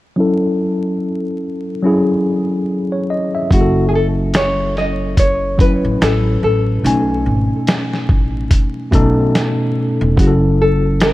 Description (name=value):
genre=lo-fi hip hop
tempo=72 BPM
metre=4/4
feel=swing 59% on 16ths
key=F# dorian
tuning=A4 = 440 Hz
part: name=mellow tine electric piano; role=accompaniment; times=0.2-11.1 s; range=B2 to G#5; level=-17 LUFS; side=left 1 dB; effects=medium stereo tremolo, cassette tape, low-pass filter
part: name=nylon-string guitar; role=melody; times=3.5-11.1 s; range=F#4 to D#5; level=-18 LUFS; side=left 1 dB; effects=low-pass filter, analog delay
part: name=upright bass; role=bass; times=3.5-11.1 s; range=E1 to B1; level=-18 LUFS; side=equal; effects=none
part: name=dusty soul sampler-style drum kit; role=drums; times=3.5-11.1 s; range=hi-hat, kick drum, snare drum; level=-15 LUFS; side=equal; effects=none
room=light reverb, digital ambience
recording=vinyl crackle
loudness=-13 LUFS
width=side -17 dB against mid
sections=0.2-3.5 A section; 3.5-11.1 B section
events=filter sweep on tine electric piano 0.2-3.5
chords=0.2 F#m7; 6.8 B13; 10.2 F#m7